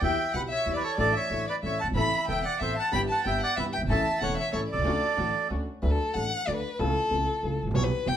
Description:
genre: tango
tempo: 187 BPM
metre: 3/4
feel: rubato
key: D major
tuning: A4 = 440 Hz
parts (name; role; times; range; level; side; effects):
- bandoneon; melody; 0.0-5.5 s; A4 to B5; -28 LUFS; right 2 dB; none
- warm violin; second line; 0.0-8.2 s; A4 to B5; -30 LUFS; left 2 dB; none
- dark upright piano; accompaniment; 0.0-8.2 s; E1 to A4; -32 LUFS; equal; none
- upright bass; bass; 0.0-8.2 s; E1 to E2; -31 LUFS; right 1 dB; none
- dark symphonic string section; stabs; 1.9-5.6 s; B3 to A4; -39 LUFS; equal; none
room: wet studio reverb, RT60 0.8 s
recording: band playing live in one room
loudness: -25 LUFS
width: side -10 dB against mid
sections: 0.0-5.8 A section; 5.8-8.2 B section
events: violin solo 5.8-8.2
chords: 0.0 Emadd9; 1.0 D/A; 1.6 A; 2.0 Amadd9; 2.9 Em/G; 3.9 A; 4.8 Dmaj7; 5.8 D; 6.8 A/C#

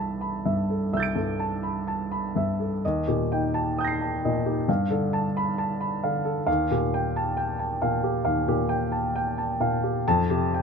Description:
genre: classical, impressionist solo piano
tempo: 62-70 BPM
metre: 4/4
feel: rubato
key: unclear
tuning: A4 = 442 Hz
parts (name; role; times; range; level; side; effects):
- warm baby grand piano; solo; 0.0-10.6 s; C2 to D7; -23 LUFS; equal; none
room: light reverb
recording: close, detailed microphones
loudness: -23 LUFS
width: side -5 dB against mid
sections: 0.0-10.6 A section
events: none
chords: 0.0 C69; 2.8 Eb6; 4.7 G9; 6.5 Ebadd9; 10.1 Fadd9

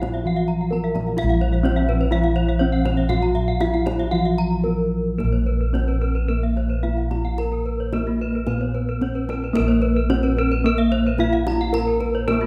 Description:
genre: Balinese gamelan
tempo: 110-130 BPM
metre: 4/4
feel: straight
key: Bb pelog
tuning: A4 = 435 Hz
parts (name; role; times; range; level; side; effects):
- gamelan-type bronze metallophone; melody; 0.0-12.5 s; Bb3 to Bb4; -26 LUFS; equal; none
- gamelan-type bronze metallophone; accompaniment; 0.0-12.5 s; F3-45c to Cb4; -32 LUFS; equal; none
- gamelan-type bronze metallophone; arpeggios; 0.0-12.4 s; Bb4 to Bb5; -31 LUFS; equal; none
- gamelan-type bronze metallophone; arpeggios; 0.0-12.5 s; Gb4-40c to Bb5; -34 LUFS; equal; none
- gamelan-type bossed gongs; bass; 0.0-12.5 s; Bb1 to Bb4; -25 LUFS; equal; none
- kendang; percussion; 0.0-12.4 s; none; -34 LUFS; equal; none
room: moderate recital hall reverb, RT60 1.4 s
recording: none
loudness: -21 LUFS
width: mono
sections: 0.0-5.2 A section; 5.2-12.5 B section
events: none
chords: none

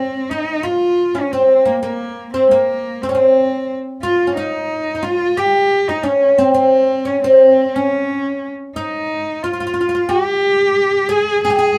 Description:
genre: turkish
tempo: 178 BPM (eighths)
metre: 7/8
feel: straight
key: unclear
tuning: A4 = 444 Hz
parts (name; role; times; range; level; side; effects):
- oud; melody; 0.0-11.8 s; Bb3 to Ab4; -17 LUFS; equal; none
- dark cello; second line; 0.0-11.8 s; Bb3 to Ab4; -20 LUFS; equal; none
room: moderate studio reverb, RT60 0.6 s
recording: band playing live in one room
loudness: -16 LUFS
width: mono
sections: 0.0-11.8 A section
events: none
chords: none

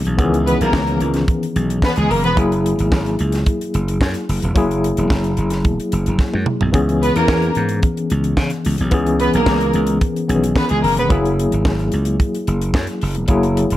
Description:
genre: disco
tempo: 110 BPM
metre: 4/4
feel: straight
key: C# dorian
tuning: A4 = 440 Hz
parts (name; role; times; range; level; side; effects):
- tine electric piano; accompaniment; 0.0-13.8 s; D#3 to G#4; -20 LUFS; left 2 dB; medium tremolo
- slap bass; bass; 0.0-13.8 s; E1 to C#3; -19 LUFS; right 1 dB; none
- tight funk drum kit; drums; 0.1-13.8 s; hi-hat, kick drum, snare drum, toms; -20 LUFS; right 1 dB; none
- rich studio string section; second line; 0.5-2.3, 7.0-11.1 s; G#3 to B4; -20 LUFS; right 1 dB; none
room: small room reverb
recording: none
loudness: -15 LUFS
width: side -14 dB against mid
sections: 0.0-13.8 A section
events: drum fill 6.2-6.7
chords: 0.0 C#m7; 2.4 F#9; 6.7 C#m7; 11.1 F#9

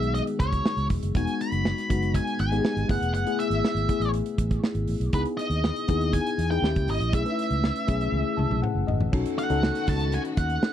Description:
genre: polished 1980s jazz-funk pop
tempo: 120 BPM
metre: 4/4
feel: straight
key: unclear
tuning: A4 = 439 Hz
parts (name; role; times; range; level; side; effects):
- octave-fuzz lead guitar; melody; 0.0-10.7 s; B4 to B5; -31 LUFS; equal; distortion
- tine electric piano; accompaniment; 0.0-10.7 s; D#3 to A5; -28 LUFS; left 4 dB; wide subtle chorus
- fingered electric bass; bass; 0.0-10.6 s; E1 to E2; -27 LUFS; right 1 dB; none
- modern studio drum kit; drums; 0.0-10.7 s; crash cymbal, hi-hat, kick drum, snare drum, toms; -27 LUFS; right 1 dB; none
- clear studio string section; sustained chords; 9.1-10.7 s; D#3 to F#4; -37 LUFS; equal; none
room: little or no reverb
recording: dry, close 1970s-style studio recording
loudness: -23 LUFS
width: side -10 dB against mid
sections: 0.0-9.1 A section; 9.1-10.7 B section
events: drum fill 8.1-9.1; tine electric piano fill 8.1-9.1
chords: 0.0 G#m7; 1.1 Emaj9 (rootless); 2.9 F#m11; 5.1 C#m9 (rootless); 6.6 D#7b9; 7.1 B13sus4; 9.1 B7

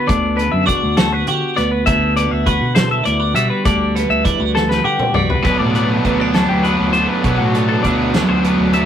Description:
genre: math rock and midwest emo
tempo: 67 BPM (dotted quarters)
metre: 6/8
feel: straight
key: unclear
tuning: A4 = 439 Hz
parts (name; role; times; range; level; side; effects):
- twelve-string electric guitar; accompaniment; 0.0-8.9 s; F#2 to A4; -19 LUFS; right 2 dB; none
- twelve-string electric guitar; arpeggios; 0.0-8.9 s; F#4 to E5; -20 LUFS; left 5 dB; none
- fingered electric bass; bass; 0.1-8.8 s; B1 to D3; -20 LUFS; equal; none
- loose indie drum kit; drums; 0.1-8.9 s; hi-hat, kick drum, snare drum, toms; -20 LUFS; equal; none
- raw garage guitar; riff; 5.4-8.9 s; B2 to D4; -18 LUFS; right 1 dB; overdrive
room: moderate small room reverb, RT60 0.6 s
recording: rough rehearsal-room recording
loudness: -13 LUFS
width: side -9 dB against mid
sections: 0.0-5.4 A section; 5.4-8.9 B section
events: drum fill 4.5-5.4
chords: 0.0 Bm/D; 1.9 Gmaj7/D; 5.4 Bm7

